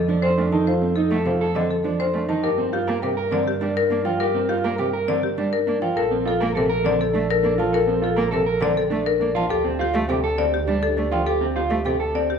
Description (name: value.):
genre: classical, minimalist pattern music.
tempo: 102 BPM.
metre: 3/4.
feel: straight.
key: G minor.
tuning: A4 = 440 Hz.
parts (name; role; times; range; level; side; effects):
marimba with hard mallets; melody; 0.0-12.4 s; G4 to A5; -24 LUFS; left 8 dB; none.
dark clarinet; second line; 0.0-12.4 s; G4 to Bb4; -30 LUFS; right 3 dB; none.
warm double bass; bass; 0.0-12.4 s; Bb1 to G2; -27 LUFS; right 2 dB; none.
rich cello; accompaniment; 0.1-12.0 s; C3 to Bb3; -28 LUFS; right 1 dB; none.
electric guitar at the edge of break-up; arpeggios; 0.1-12.3 s; C4 to C5; -24 LUFS; right 4 dB; none.
room: moderate recital hall reverb, RT60 1.3 s.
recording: none.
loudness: -19 LUFS.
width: side -6 dB against mid.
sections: 0.0-12.4 A section.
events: none.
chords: 0.0 F7; 2.4 Gm7; 6.0 Bbmaj7; 9.5 D7sus4.